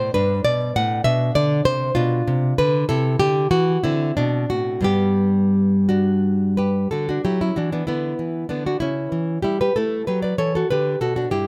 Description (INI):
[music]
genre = classical, baroque-style dance for nylon-string guitar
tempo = 57-67 BPM (dotted quarters)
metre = 6/8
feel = rubato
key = G major, D major from 6.9 s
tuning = A4 = 440 Hz
[part]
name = nylon-string guitar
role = solo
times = 0.0-11.5 s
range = G2 to F#5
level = -20 LUFS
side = equal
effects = none
[sound]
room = light reverb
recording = close, detailed microphones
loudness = -20 LUFS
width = mono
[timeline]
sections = 0.0-6.9 A section; 6.9-11.5 A section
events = none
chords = 0.2 G; 1.1 Cmaj9/B; 2.9 C; 3.9 D5; 4.9 G; 6.9 D; 7.9 E5/D; 8.8 A7/C#; 10.7 D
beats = 0.16 | 1.07 1.97 | 2.91 3.85 | 4.86 5.89 | 6.92 7.88 | 8.81 9.76 | 10.70